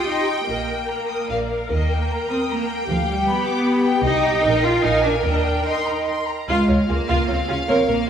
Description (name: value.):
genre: quick classical-period movement for string orchestra.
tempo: 150 BPM.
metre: 3/4.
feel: rubato.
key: Eb major.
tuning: A4 = 440 Hz.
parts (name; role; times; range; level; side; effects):
clear studio violin section; melody; 0.0-8.1 s; F5 to Ab5; -28 LUFS; left 4 dB; none.
rich studio violin section; second line; 0.0-8.0 s; Ab4 to Eb6; -26 LUFS; left 2 dB; none.
rich studio viola section; accompaniment; 0.0-8.0 s; F4 to Bb4; -25 LUFS; equal; none.
rich studio cello section; bass; 0.0-8.1 s; F3 to F4; -22 LUFS; right 1 dB; none.
rich studio double bass section; bass; 0.5-8.0 s; Bb1 to Eb2; -25 LUFS; right 1 dB; none.
room: wet recital hall reverb, RT60 1.5 s.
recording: recorded in a church or concert hall.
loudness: -18 LUFS.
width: side -8 dB against mid.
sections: 0.0-6.5 A section; 6.5-8.1 B section.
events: none.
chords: 0.5 Eb/Bb; 1.7 Eb; 2.9 G/D; 4.1 Cm; 4.4 Eb/Bb; 4.8 Bb7; 5.3 Eb; 6.5 Db.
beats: 0.08 | 0.48 0.89 1.30 | 1.71 2.11 2.50 | 2.89 3.28 3.67 | 4.05 4.44 4.84 | 5.25 5.66 6.07 | 6.48 6.89 7.29 | 7.68 8.08.